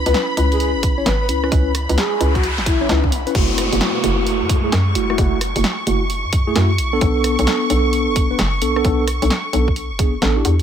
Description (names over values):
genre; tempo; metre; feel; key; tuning
UK garage, two-step garage; 131 BPM; 4/4; swing 64% on 16ths; F# minor; A4 = 440 Hz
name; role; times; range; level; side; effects
warm symphonic violin section; sustained chords; 0.0-10.6 s; B5 to C#6; -26 LUFS; equal; sidechain pumping
mellow tine electric piano; stabs; 0.0-10.5 s; A3 to C#5; -21 LUFS; equal; medium stereo tremolo, ping-pong delay
hollow knocking FM bass; bass; 0.0-10.6 s; F#1 to F#2; -20 LUFS; equal; sidechain pumping
breathy flute-like synth lead; melody; 0.1-3.1 s; E4 to B4; -24 LUFS; left 2 dB; wide subtle chorus, ping-pong delay
punchy analog drum machine; drums; 0.1-10.6 s; crash cymbal, hi-hat, rim click, snare drum; -23 LUFS; right 1 dB; none
electronic kick drum; drums; 0.8-10.1 s; none; -19 LUFS; equal; none
noise sweep and downlifter; sound effects; 1.9-7.0 s; none; -26 LUFS; left 1 dB; none
room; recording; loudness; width
light reverb; none; -15 LUFS; side -9 dB against mid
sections
0.0-3.4 A section; 3.4-10.6 B section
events
noise sweep 1.9-3.4; drop 3.4-10.6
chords
0.0 C#m7; 3.4 F#m7; 6.8 Bm7